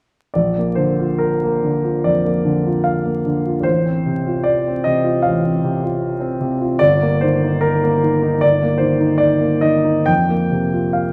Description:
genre	classical, romantic character piece for solo piano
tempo	74 BPM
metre	4/4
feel	uneven beats, rubato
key	Bb major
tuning	A4 = 440 Hz
part	warm grand piano	solo	0.3-11.1 s	G1 to G5	-17 LUFS	equal	none
room	moderate recital hall reverb, RT60 1.3 s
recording	vinyl crackle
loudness	-17 LUFS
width	mono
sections	0.3-11.1 A section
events	none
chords	0.3 Bb; 3.6 F/A; 6.8 Eb/G; 10.1 Fsus4

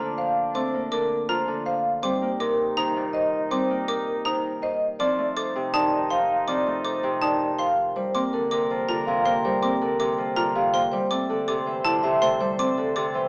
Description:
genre	classical, minimalist pattern music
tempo	162 BPM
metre	4/4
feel	straight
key	G dorian from 8.0 s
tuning	A4 = 440 Hz
part	vibraphone with soft mallets	melody	0.0-13.3 s	A4 to F5	-28 LUFS	equal	none
part	mellow soprano saxophone	second line	0.0-13.3 s	D4 to C5	-36 LUFS	equal	none
part	Celtic harp	accompaniment	0.0-13.3 s	Bb2 to Bb3	-31 LUFS	equal	none
part	buzzing marimba with medium hard mallets	arpeggios	0.0-13.2 s	C4 to C5	-34 LUFS	equal	none
part	xylophone with wooden mallets	arpeggios	0.0-13.2 s	A5 to D6	-32 LUFS	equal	none
room	wet large studio reverb, RT60 1.1 s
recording	heard from further back in the room, small speaker sound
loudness	-24 LUFS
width	mono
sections	0.0-8.0 A section; 8.0-13.3 B section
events	none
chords	0.0 Bbmaj7; 2.0 Cm7; 5.0 F7/C; 8.0 Gm7; 10.9 Am7

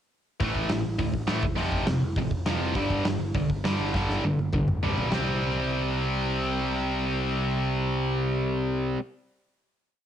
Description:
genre	punk rock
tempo	203 BPM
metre	4/4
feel	straight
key	C major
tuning	A4 = 439 Hz
part	tight distorted guitar	riff	0.4-9.0 s	F2 to C4	-26 LUFS	equal	distortion
part	overdriven picked electric bass	bass	0.4-8.9 s	F1 to A2	-31 LUFS	equal	none
part	big rock drum kit	drums	0.4-5.2 s	crash cymbal, hi-hat, kick drum, snare drum, toms	-30 LUFS	equal	cassette tape
room	studio reverb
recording	home recording on cassette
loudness	-24 LUFS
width	side -10 dB against mid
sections	0.4-5.1 verse; 5.1-7.5 final chord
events	drum fill 3.9-5.1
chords	0.4 A5; 1.4 F5; 2.8 G5; 5.1 C5

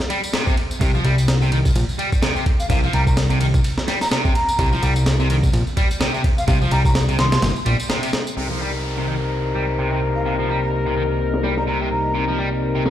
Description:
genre	breakbeat, breaks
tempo	127 BPM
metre	4/4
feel	swing 57% on 16ths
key	C minor pentatonic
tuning	A4 = 440 Hz
part	breakbeat sampler-style drum kit	drums	0.0-12.9 s	kick drum, ride cymbal, snare drum	-21 LUFS	equal	low-pass filter on kick, low-pass filter on cymbals, low-pass filter on snare
part	tambourine	drums	0.0-8.3 s	none	-34 LUFS	equal	low-pass filter on perc, low-pass filter on room
part	distorted electric guitar	riff	0.1-12.9 s	C3 to G3	-24 LUFS	equal	overdrive, low-pass filter, dub echo
part	fat analog bass	bass	0.8-12.9 s	G1 to C2	-20 LUFS	equal	none
part	breathy jazz flute	melody	2.6-12.4 s	F5 to C6	-26 LUFS	equal	old record sound, vintage 12-bit sampler grit, dub echo
part	deep dark ambient pad	sustained chords	10.0-12.9 s	C4 to Eb5	-29 LUFS	left 3 dB	chorus, built-in reverb, sidechain pumping
part	mellow horn section	stabs	8.4-12.9 s	G3 to Bb4	-24 LUFS	left 3 dB	low-pass filter, dub echo
part	downlifter	sound effects	8.4-12.1 s	none	-34 LUFS	equal	none
room	light reverb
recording	played on a big sound system in a bare room, large studio reverb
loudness	-17 LUFS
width	side -12 dB against mid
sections	0.0-8.4 A section; 8.4-12.9 B section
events	break 7.4-8.4; filter sweep on distorted electric guitar 8.4-12.9; filter sweep on horn section 8.4-12.9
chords	0.0 C5; 8.4 Cm7

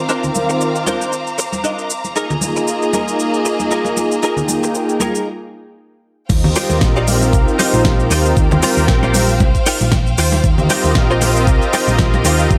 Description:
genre	nu-disco, nu disco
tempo	116 BPM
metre	4/4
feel	swing 56% on 16ths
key	Eb major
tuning	A4 = 439 Hz
part	warm analog pad	accompaniment	0.0-12.6 s	Eb3 to G5	-21 LUFS	equal	chorus, sidechain pumping, slapback echo
part	rich studio violin section	sustained chords	0.0-12.6 s	Bb3 to D6	-26 LUFS	equal	sidechain pumping
part	direct-recorded clean electric guitar	riff	0.1-12.5 s	D4 to Eb5	-23 LUFS	equal	ensemble chorus
part	pop drum kit	drums	0.1-12.6 s	crash cymbal, hi-hat, shaker, snare drum	-24 LUFS	equal	small room reverb
part	congas	percussion	0.2-12.2 s	none	-26 LUFS	equal	none
part	hollow-body short-scale picked electric bass	bass	6.3-12.6 s	Bb1 to Eb2	-19 LUFS	equal	tube saturation
part	electronic kick drum	drums	6.3-12.6 s	none	-18 LUFS	equal	small room reverb
room	light reverb, digital ambience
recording	none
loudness	-15 LUFS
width	mono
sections	0.0-6.3 A section; 6.3-12.6 B section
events	break 5.3-6.3; drop 6.3-12.6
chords	0.0 Cm11; 2.2 Bb7sus4; 6.3 Eb69

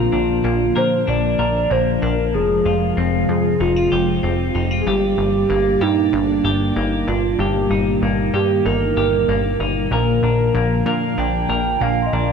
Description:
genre	dream pop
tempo	95 BPM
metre	4/4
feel	straight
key	unclear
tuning	A4 = 440 Hz
part	hollow clarinet-like synth lead	melody	0.0-12.3 s	D4 to G5	-20 LUFS	right 3 dB	chorus, phaser
part	string machine, cellos	sustained chords	0.0-12.3 s	C3 to D5	-23 LUFS	left 1 dB	phaser, ensemble chorus
part	semi-hollow electric guitar	arpeggios	0.0-12.3 s	G2 to Bb4	-22 LUFS	left 4 dB	wide subtle chorus, tape echo
part	plucky analog bass	bass	0.0-12.3 s	F1 to Bb2	-22 LUFS	equal	none
part	large celesta	texture	10.2-12.3 s	Ab5 to C6	-34 LUFS	right 2 dB	tape echo
room	moderate huge ambient reverb, RT60 5.8 s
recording	dark, warm production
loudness	-16 LUFS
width	side -6 dB against mid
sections	0.0-12.3 A section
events	none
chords	0.0 Bb; 2.3 Fmadd9; 4.9 Gm; 7.4 Eb/G; 9.9 Bb

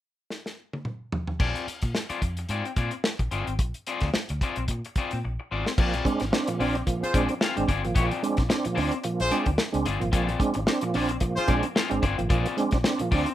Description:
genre	funk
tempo	110 BPM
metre	4/4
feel	swing 56% on 16ths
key	Bb mixolydian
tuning	A4 = 440 Hz
part	warm soul drum kit	drums	0.3-13.3 s	crash cymbal, hi-hat, kick drum, snare drum, toms	-27 LUFS	equal	none
part	electric guitar at the edge of break-up	accompaniment	1.4-13.3 s	C4 to F5	-31 LUFS	left 5 dB	none
part	vintage muted fingered electric bass	bass	1.4-13.2 s	G1 to Bb2	-30 LUFS	equal	none
part	tonewheel organ	stabs	5.8-13.3 s	Bb2 to D4	-27 LUFS	right 3 dB	chorus vibrato, stopped rotary speaker, tape echo
part	clear horn section	second line	7.0-11.5 s	F4 to C5	-27 LUFS	left 1 dB	none
room	moderate studio reverb, RT60 0.5 s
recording	rough home demo mix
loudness	-24 LUFS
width	side -12 dB against mid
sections	0.0-1.4 A section; 1.4-5.8 B section; 5.8-13.3 C section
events	drum fill 0.3-1.4, 5.2-5.8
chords	0.0 N.C.; 1.4 Bb9

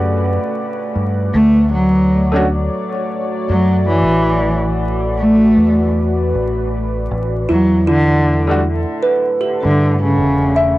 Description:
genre	trip hop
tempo	78 BPM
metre	4/4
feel	swing 60% on 16ths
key	unclear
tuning	A4 = 442 Hz
part	felt-muted upright piano	accompaniment	0.0-2.5, 8.5-8.6 s	G3 to D5	-21 LUFS	equal	harmonic tremolo, tape echo
part	deep dark ambient pad	sustained chords	0.0-10.8 s	A3 to F#5	-22 LUFS	equal	chorus, built-in reverb
part	deep dub fingered electric bass	bass	0.0-10.8 s	E1 to G2	-19 LUFS	equal	none
part	dark cello	melody	1.3-10.7 s	C#3 to A3	-16 LUFS	equal	cassette tape, dub echo
part	music box	arpeggios	7.5-10.8 s	E4 to E5	-17 LUFS	right 1 dB	none
room	moderate studio ambience, RT60 0.5 s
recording	home recording on cassette, vinyl crackle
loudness	-13 LUFS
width	side -17 dB against mid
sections	0.0-10.8 A section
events	none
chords	0.0 Em11 (rootless); 1.3 Dmaj7; 7.5 Em11

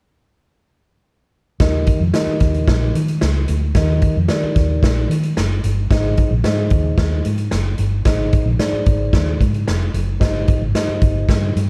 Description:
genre	uptempo 1960s-style soul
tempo	112 BPM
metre	4/4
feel	straight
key	Eb major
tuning	A4 = 440 Hz
part	mellow tine electric piano	accompaniment	1.6-11.6 s	G2 to Eb5	-24 LUFS	equal	none
part	vintage muted fingered electric bass	bass	1.6-11.7 s	F1 to Eb3	-21 LUFS	equal	none
part	swinging big-band drum kit	drums	1.6-11.7 s	hi-hat, kick drum, snare drum	-21 LUFS	equal	none
room	light reverb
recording	dark, warm production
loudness	-17 LUFS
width	mono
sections	1.6-11.7 A section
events	none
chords	1.6 Eb; 5.9 Ab; 10.2 Cm

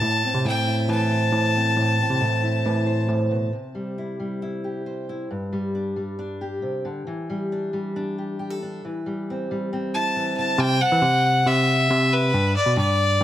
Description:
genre	indie folk with a building arrangement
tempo	136 BPM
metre	4/4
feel	straight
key	unclear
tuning	A4 = 440 Hz
part	clear fiddle	melody	0.0-3.1, 9.9-13.2 s	B4 to A5	-21 LUFS	left 1 dB	digital delay
part	fingerpicked steel-string acoustic guitar	accompaniment	0.0-12.3 s	G2 to C5	-27 LUFS	equal	none
part	bell-like tine electric piano	bass	0.0-3.5, 10.6-13.2 s	G2 to E3	-22 LUFS	equal	none
room	light reverb, small room ambience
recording	none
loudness	-21 LUFS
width	side -12 dB against mid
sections	0.0-3.5 A section; 3.5-10.6 B section; 10.6-13.2 A section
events	none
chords	0.0 Am; 3.5 C; 5.3 G5; 7.1 Em7; 8.8 C/E; 10.6 C; 12.3 G

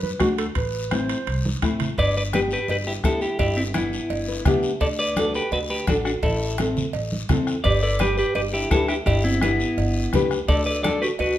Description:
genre	latin, cumbia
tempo	169 BPM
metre	4/4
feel	straight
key	G major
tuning	A4 = 440 Hz
part	dark clarinet	second line	0.0-1.4, 7.7-11.4 s	B3 to C5	-29 LUFS	right 4 dB	none
part	upright bass	bass	0.0-11.4 s	G1 to F#2	-27 LUFS	equal	none
part	congas	percussion	0.0-11.0 s	none	-28 LUFS	right 2 dB	none
part	nylon-string guitar	accompaniment	0.2-11.1 s	A3 to E5	-26 LUFS	left 3 dB	none
part	bombo	percussion	0.2-11.0 s	none	-26 LUFS	left 1 dB	none
part	guiro	percussion	0.2-11.4 s	none	-36 LUFS	left 4 dB	none
part	timbales and cowbell	percussion	0.2-11.4 s	none	-32 LUFS	right 6 dB	none
part	clean electric guitar	melody	2.0-11.4 s	B3 to D5	-24 LUFS	left 1 dB	spring reverb
room	moderate large studio reverb, RT60 0.9 s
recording	minimal, uncompressed stereo recording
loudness	-20 LUFS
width	side -12 dB against mid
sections	0.0-2.0 A section; 2.0-11.4 B section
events	clarinet solo 0.0-2.0; drum fill 1.4-2.0; nylon-string guitar fill 4.1-4.8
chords	0.0 D; 0.6 Amadd9; 2.0 G6; 4.8 D; 6.2 Am; 7.7 G6; 10.5 D

